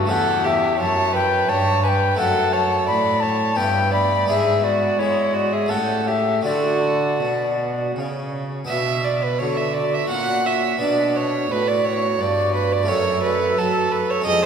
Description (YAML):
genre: classical, baroque-style sonata movement with continuo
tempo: 86 BPM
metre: 3/4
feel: rubato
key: D major, B minor from 8.7 s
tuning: A4 = 440 Hz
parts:
  - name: tenor recorder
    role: melody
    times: 0.0-14.5 s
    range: D4 to B5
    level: -22 LUFS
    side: left 4 dB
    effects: none
  - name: rich violin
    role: second line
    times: 0.0-14.5 s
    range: E4 to F#5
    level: -22 LUFS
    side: right 4 dB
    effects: none
  - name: harpsichord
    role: accompaniment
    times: 0.0-14.5 s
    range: E2 to G#4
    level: -27 LUFS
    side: equal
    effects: none
  - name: rich cello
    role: bass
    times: 0.0-14.5 s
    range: E2 to G#3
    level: -26 LUFS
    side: right 1 dB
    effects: none
room: wet church reverb, RT60 2.7 s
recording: recorded in a church or concert hall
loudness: -18 LUFS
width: side -7 dB against mid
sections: 0.0-8.7 A section; 8.7-14.5 A section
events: none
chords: 0.1 A7/E; 2.2 D/F#; 3.6 Em7/G; 4.3 E7/G#; 5.7 A7; 6.4 D; 8.7 Bm; 10.1 F#/A#; 10.8 Bm; 12.9 F#m